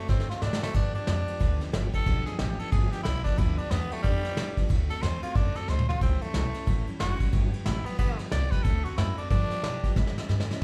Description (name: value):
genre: rockabilly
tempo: 182 BPM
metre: 4/4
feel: swing 61% on 8ths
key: unclear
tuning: A4 = 442 Hz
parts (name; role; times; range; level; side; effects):
- raspy tenor saxophone; melody; 0.0-9.9 s; G3 to D5; -36 LUFS; equal; none
- picked steel-string acoustic guitar; accompaniment; 0.0-10.6 s; G2 to G4; -39 LUFS; equal; none
- upright bass; bass; 0.1-10.5 s; F#1 to B2; -32 LUFS; equal; none
- vintage brush drum kit; drums; 0.1-10.6 s; kick drum, ride cymbal, snare drum, splash cymbal, toms; -30 LUFS; equal; none
room: moderate large studio reverb, RT60 1.2 s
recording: band playing live in one room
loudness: -27 LUFS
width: mono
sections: 0.0-10.6 A section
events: tenor saxophone solo 0.0-10.6; drum fill 0.1-0.7, 5.7-6.0, 10.0-10.6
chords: 0.0 D7; 0.7 G7; 4.7 D7; 6.0 A7; 7.3 G7; 8.6 D7; 9.3 G7; 10.0 A7